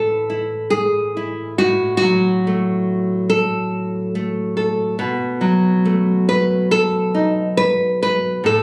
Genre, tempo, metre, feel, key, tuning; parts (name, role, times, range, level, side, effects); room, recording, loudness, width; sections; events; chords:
folk, solo fingerstyle acoustic guitar; 70 BPM; 4/4; rubato; A4 = 441 Hz
nylon-string guitar; solo; 0.0-8.6 s; A2 to B4; -18 LUFS; equal
light reverb; recorded on a phone in the room, club reverb; -18 LUFS; mono
0.0-8.6 A section
0.0 A; 1.6 F#m/A; 5.0 B7